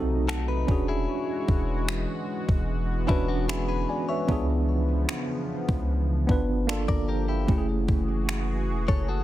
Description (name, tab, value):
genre	contemporary R&B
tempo	75 BPM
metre	4/4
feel	straight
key	unclear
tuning	A4 = 441 Hz
part	tine electric piano	accompaniment	0.0-9.2 s	A3 to B5	-30 LUFS	right 2 dB	overdrive, fast stereo tremolo
part	lush unison pad	sustained chords	0.0-9.2 s	B2 to C#5	-34 LUFS	equal	chorus
part	long sustained 808-style bass	bass	0.0-9.2 s	E1 to C#2	-28 LUFS	equal	none
part	direct-recorded clean electric guitar	arpeggios	0.3-9.2 s	C#4 to D5	-34 LUFS	left 7 dB	digital delay
part	crisp 8-bit digital drum machine	drums	0.3-9.1 s	finger snaps, kick drum	-26 LUFS	equal	overdrive, soft clipping on snare
room	little or no reverb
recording	dense, heavily limited modern master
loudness	-24 LUFS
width	side -14 dB against mid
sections	0.0-9.2 A section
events	none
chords	0.0 B7b9; 0.7 E13; 4.3 C#7b9; 6.7 Gm9; 7.5 F#m9